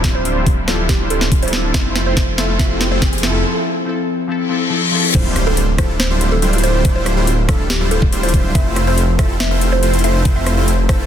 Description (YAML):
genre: future bass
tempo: 141 BPM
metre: 4/4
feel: half-time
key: D minor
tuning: A4 = 438 Hz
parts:
  - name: mallet-like synth pluck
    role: melody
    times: 0.0-11.1 s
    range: G4 to E5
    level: -25 LUFS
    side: right 2 dB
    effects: chorus, phaser, sidechain pumping, ping-pong delay
  - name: glassy digital keys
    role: accompaniment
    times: 0.0-5.2 s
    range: F3 to A4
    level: -22 LUFS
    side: left 3 dB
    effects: chorus, sidechain pumping, ping-pong delay
  - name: clear symphonic string section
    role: sustained chords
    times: 0.0-3.4 s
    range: C3 to E4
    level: -32 LUFS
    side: equal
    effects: none
  - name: supersaw chords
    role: riff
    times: 0.0-11.0 s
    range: G3 to C5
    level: -21 LUFS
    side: equal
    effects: sidechain pumping, low-pass filter
  - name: wide detuned saw bass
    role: bass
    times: 0.0-11.1 s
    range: D1 to F1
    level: -18 LUFS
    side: equal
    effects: chorus, sidechain pumping
  - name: electronic kick drum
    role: drums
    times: 0.0-11.0 s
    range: none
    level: -16 LUFS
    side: equal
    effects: overdrive
  - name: trap drum kit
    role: drums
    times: 0.0-11.0 s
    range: crash cymbal, hi-hat, rim click, snare drum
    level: -22 LUFS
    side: left 1 dB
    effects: overdrive, soft clipping on snare
  - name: riser, reverse cymbal and impact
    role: sound effects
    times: 1.2-6.8 s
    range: none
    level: -23 LUFS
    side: left 2 dB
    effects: none
room: light reverb, digital ambience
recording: dense, heavily limited modern master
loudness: -13 LUFS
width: side -9 dB against mid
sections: 0.0-5.1 A section; 5.1-11.1 B section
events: build-up 0.0-5.1; drum fill 0.0-3.4; riser 1.2-3.4; reverse cymbal 4.4-5.1; drop 5.1-11.1; impact 5.1-6.8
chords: 0.0 Dm11; 1.7 Fmaj7; 5.1 Dm11; 8.6 Fmaj7